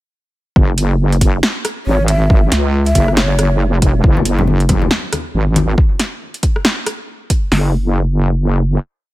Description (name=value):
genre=deep dubstep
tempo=138 BPM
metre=4/4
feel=swing 60% on 16ths, half-time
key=unclear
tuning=A4 = 443 Hz
part: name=wobble bass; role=bass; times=0.6-8.8 s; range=F#1 to C#2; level=-14 LUFS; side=equal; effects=chorus, tube saturation
part: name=deep house drum kit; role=drums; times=0.6-7.6 s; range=hi-hat, kick drum, snare drum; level=-13 LUFS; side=equal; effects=overdrive
part: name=deep house drum kit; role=drums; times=0.8-7.4 s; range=hi-hat, rim click, snare drum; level=-18 LUFS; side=equal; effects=overdrive
part: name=breathy ney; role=melody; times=1.9-3.6 s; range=C#5 to E5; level=-21 LUFS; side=equal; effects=dub echo
part: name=congas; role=percussion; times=4.2-5.7 s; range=none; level=-20 LUFS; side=left 2 dB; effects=dub echo
room=digital ambience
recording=none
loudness=-12 LUFS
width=side -17 dB against mid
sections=0.6-7.5 drop; 7.5-9.1 final note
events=drop 0.6-7.5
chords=0.6 F#5; 7.5 N.C.